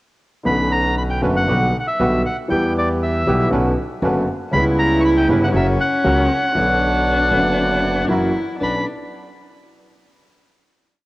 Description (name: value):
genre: tango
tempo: 118 BPM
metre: 4/4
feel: rubato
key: B harmonic minor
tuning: A4 = 440 Hz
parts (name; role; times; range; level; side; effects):
- warm grand piano; accompaniment; 0.4-8.8 s; F#1 to C#5; -19 LUFS; equal; cassette tape
- bandoneon; melody; 0.5-8.9 s; D5 to C#6; -21 LUFS; equal; cassette tape
- bandoneon; stabs; 0.5-8.8 s; C#4 to C#5; -29 LUFS; right 3 dB; cassette tape
- upright bass; bass; 0.5-8.8 s; F#1 to E2; -25 LUFS; equal; none
- warm cello; second line; 4.5-8.8 s; C#4 to E4; -20 LUFS; equal; cassette tape
room: moderate lush hall reverb, RT60 2.6 s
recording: home recording on cassette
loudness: -15 LUFS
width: side -19 dB against mid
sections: 0.5-8.6 A section; 8.6-10.6 final chord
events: none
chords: 0.5 Bmadd9; 1.5 Gmaj7/B; 2.5 Em; 3.5 Bmadd9; 4.5 C#m7b5; 5.5 F#; 6.5 Bmadd9; 8.1 F#7; 8.6 Bmadd9